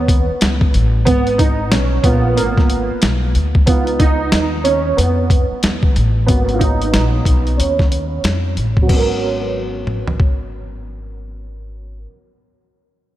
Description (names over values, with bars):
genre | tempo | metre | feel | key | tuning
hip hop, jazz-hop | 92 BPM | 4/4 | swing 62% on 16ths | G# dorian | A4 = 440 Hz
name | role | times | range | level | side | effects
warm upright piano | accompaniment | 0.0-12.1 s | F#3 to A#4 | -18 LUFS | right 3 dB | ensemble chorus, low-pass filter
upright bass | bass | 0.0-12.0 s | G#1 to E#2 | -19 LUFS | equal | none
boom bap sampler-style drum kit | drums | 0.1-10.4 s | crash cymbal, hi-hat, kick drum, snare drum, toms | -16 LUFS | equal | none
room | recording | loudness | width
moderate church reverb, RT60 3.4 s | dreamy mix soaked in reverb | -13 LUFS | side -14 dB against mid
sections
0.0-8.9 A section; 8.9-11.5 B section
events
upright piano solo 0.0-8.9; filter sweep on upright piano 0.0-8.9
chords
0.0 G#m69; 3.7 C#7; 6.3 G#m11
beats
0.41 | 1.06 1.72 2.37 3.02 | 3.67 4.33 4.98 5.63 | 6.28 6.93 7.59 8.24 | 8.89 9.54 10.20 10.85